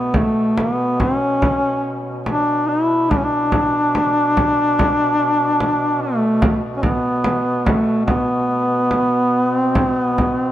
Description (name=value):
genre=caucasian folk, Caucasian lament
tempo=72 BPM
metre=4/4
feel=rubato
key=B minor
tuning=A4 = 441 Hz
part: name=mellow duduk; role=melody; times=0.0-10.5 s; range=A3 to E4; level=-16 LUFS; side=equal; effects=none
part: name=warm duduk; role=drone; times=0.0-10.5 s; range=B2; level=-28 LUFS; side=equal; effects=none
part: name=frame drum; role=percussion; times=0.1-10.4 s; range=none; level=-21 LUFS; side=right 1 dB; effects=none
room=moderate plate reverb, RT60 3.2 s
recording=none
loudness=-15 LUFS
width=side -12 dB against mid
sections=0.0-10.5 A section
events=none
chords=none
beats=0.57 1.42 2.26 | 3.10 3.94 4.78 5.60 | 6.42 7.24 8.08 8.91 | 9.76